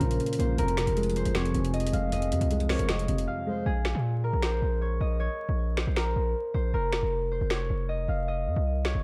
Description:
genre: hip hop, trap.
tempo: 156 BPM.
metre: 4/4.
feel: half-time.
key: Bb minor.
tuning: A4 = 440 Hz.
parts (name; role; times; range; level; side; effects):
concert harp; melody; 0.0-9.0 s; Ab4 to F5; -34 LUFS; equal; low-pass filter.
breathy flute-like synth lead; second line; 0.0-3.7 s; Bb4 to C5; -44 LUFS; equal; none.
dark grand piano; accompaniment; 0.0-3.7 s; F2 to Db4; -33 LUFS; equal; low-pass filter.
dark analog pad; sustained chords; 0.0-3.6 s; F3 to Ab4; -42 LUFS; equal; chorus, phaser.
distorted 808-style bass; bass; 0.0-9.0 s; F1 to Bb2; -30 LUFS; equal; distortion.
trap drum kit; drums; 0.0-8.9 s; finger snaps, hi-hat, snare drum; -36 LUFS; equal; none.
room: digital ambience.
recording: dark, warm production, vinyl crackle.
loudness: -28 LUFS.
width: mono.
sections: 0.0-3.7 A section; 3.7-9.0 B section.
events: break 3.3-3.7; hi-hats muted 3.7-9.0.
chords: 0.0 Bbm; 0.6 Fm; 3.7 Bbm; 6.7 F5.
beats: 0.20 | 0.58 0.97 1.35 1.74 | 2.12 2.51 2.89 3.28 | 3.66 4.04 4.43 4.81 | 5.20 5.58 5.97 6.35 | 6.74 7.12 7.51 7.89 | 8.28 8.66.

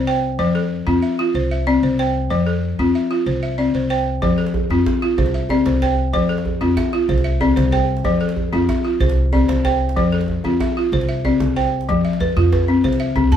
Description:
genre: west african traditional, West African string and xylophone music.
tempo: 125 BPM (dotted quarters).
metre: 12/8.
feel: straight.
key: F lydian.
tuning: A4 = 440 Hz.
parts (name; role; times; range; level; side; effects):
balafon; arpeggios; 0.0-13.4 s; F3 to A5; -18 LUFS; left 1 dB; none.
upright bass; bass; 0.0-13.4 s; C2 to G2; -21 LUFS; equal; none.
djembe; percussion; 4.2-13.4 s; none; -24 LUFS; right 3 dB; none.
room: moderate studio ambience, RT60 0.5 s.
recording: band playing live in one room.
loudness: -16 LUFS.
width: side -9 dB against mid.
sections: 0.0-11.9 A section; 11.9-13.4 B section.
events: none.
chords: 0.4 F; 1.3 C; 2.3 F; 3.3 C; 4.2 F; 5.2 C; 6.1 F; 7.1 C; 8.1 F; 9.0 C; 10.0 F; 10.9 C; 11.9 F5; 12.8 C.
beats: | 0.39 0.87 1.35 1.83 | 2.31 2.79 3.27 3.74 | 4.22 4.70 5.18 5.66 | 6.14 6.61 7.09 7.57 | 8.05 8.53 9.01 9.49 | 9.97 10.45 10.92 11.40 | 11.88 12.36 12.84 13.32.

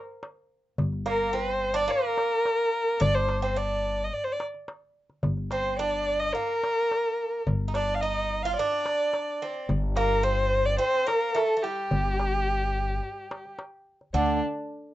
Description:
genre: Turkish makam ensemble.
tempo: 108 BPM.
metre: 4/4.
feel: straight.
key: G makam nihavent.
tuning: A4 = 440 Hz.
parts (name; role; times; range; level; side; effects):
darbuka; percussion; 0.2-14.4 s; none; -31 LUFS; equal; none.
upright bass; bass; 0.8-14.4 s; G1 to D2; -30 LUFS; left 1 dB; none.
rich violin; melody; 1.1-14.4 s; D4 to F5; -26 LUFS; equal; none.
Greek bouzouki; second line; 1.1-14.4 s; D3 to F4; -32 LUFS; right 4 dB; slapback echo.
room: light reverb.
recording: rough home demo mix, nothing above 7.9 kHz.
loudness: -24 LUFS.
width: side -14 dB against mid.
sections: 0.0-14.1 A section.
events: none.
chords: none.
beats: 0.22 | 0.78 1.34 1.89 2.45 | 3.01 3.56 4.12 4.68 | 5.24 5.79 6.35 6.91 | 7.46 8.02 8.58 9.13 | 9.69 10.25 10.80 11.36 | 11.91 12.47 13.03 13.58 | 14.14.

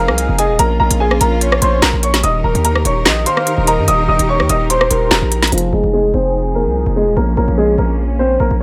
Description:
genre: hip hop, drill.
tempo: 146 BPM.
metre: 4/4.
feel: half-time.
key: F minor.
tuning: A4 = 440 Hz.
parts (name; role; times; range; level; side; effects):
clear upright piano; melody; 0.0-8.6 s; F3 to Eb6; -19 LUFS; equal; low-pass filter.
breathy flute-like synth lead; second line; 0.0-5.1 s; Bb4 to F5; -25 LUFS; equal; chorus, tape echo.
rich symphonic string section; sustained chords; 0.0-8.6 s; Eb3 to Bb4; -24 LUFS; equal; low-pass filter.
hard-hitting 808-style bass; bass; 0.0-8.6 s; Eb1 to G2; -19 LUFS; equal; none.
drill drum kit; drums; 0.1-5.6 s; handclaps, hi-hat, rim click, snare drum; -17 LUFS; equal; none.
room: light reverb, studio reverb.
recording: none.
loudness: -14 LUFS.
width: mono.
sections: 0.0-5.5 A section; 5.5-8.6 B section.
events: filter sweep 5.5-8.6.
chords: 0.0 Fm7; 0.6 Bbm; 2.2 Eb; 5.5 Fm7; 7.2 Bbm.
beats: 0.18 | 0.59 1.00 1.41 1.82 | 2.23 2.65 3.06 3.47 | 3.88 4.29 4.70 5.11 | 5.52 5.93 6.34 6.75 | 7.17 7.58 7.99 8.40.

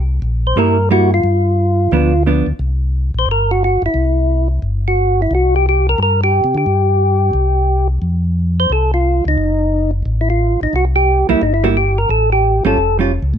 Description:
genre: jazz.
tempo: 177 BPM.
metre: 4/4.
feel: swing 63% on 8ths.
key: C mixolydian.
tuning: A4 = 437 Hz.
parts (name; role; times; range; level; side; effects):
mellow tonewheel organ; bass; 0.0-13.4 s; E#1 to D3; -16 LUFS; equal; slow rotary speaker.
percussive tonewheel organ; melody; 0.5-13.0 s; Eb4 to C5; -16 LUFS; equal; slow rotary speaker.
vintage hollow-body jazz guitar; accompaniment; 0.6-2.5, 11.3-13.1 s; F3 to E#4; -16 LUFS; right 5 dB; none.
room: light reverb.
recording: none.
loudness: -13 LUFS.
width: side -8 dB against mid.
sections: 0.0-2.6 A section; 2.6-13.4 A section.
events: none.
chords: 0.0 C7; 1.2 G7; 2.6 C7; 6.7 N.C.; 7.3 C5; 8.0 F5; 9.4 F#m6; 10.7 C7; 12.1 Aaug7.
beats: 0.23 0.56 0.90 | 1.24 1.58 1.92 2.26 | 2.60 2.94 3.28 3.62 | 3.96 4.29 4.63 4.97 | 5.31 5.65 5.99 6.33 | 6.67 7.01 7.35 7.69 | 8.03 8.37 8.71 9.05 | 9.38 9.72 10.06 10.40 | 10.74 11.08 11.42 11.76 | 12.10 12.44 12.78 13.12.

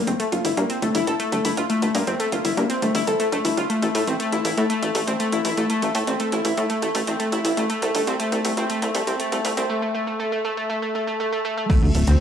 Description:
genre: melodic techno.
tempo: 120 BPM.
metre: 4/4.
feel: straight.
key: A phrygian.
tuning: A4 = 441 Hz.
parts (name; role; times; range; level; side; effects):
analog pluck; arpeggios; 0.0-12.2 s; A3 to A4; -22 LUFS; left 1 dB; chorus, cassette tape, sidechain pumping, tape echo.
tight sequencer bass; bass; 0.0-12.2 s; D1 to A2; -24 LUFS; equal; tube saturation, sidechain pumping, high-pass filter.
punchy analog drum machine; drums; 0.1-12.2 s; crash cymbal, hi-hat; -31 LUFS; right 1 dB; overdrive, sidechain pumping on hats, sidechain pumping on cymbals.
electronic kick drum; drums; 11.7-11.8 s; none; -18 LUFS; equal; overdrive.
room: moderate lush hall reverb, RT60 2.2 s.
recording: dry, gritty hardware recording, high-pass filter, studio reverb.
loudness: -20 LUFS.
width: side -8 dB against mid.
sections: 0.0-11.7 A section.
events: build-up 0.0-11.7.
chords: 0.0 Gmadd9; 3.7 Am; 7.7 C5; 11.7 D5.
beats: 0.20 0.70 1.20 | 1.70 2.20 2.70 3.20 | 3.70 4.20 4.70 5.20 | 5.70 6.20 6.70 7.20 | 7.70 8.20 8.70 9.20 | 9.70 10.20 10.70 11.20 | 11.70.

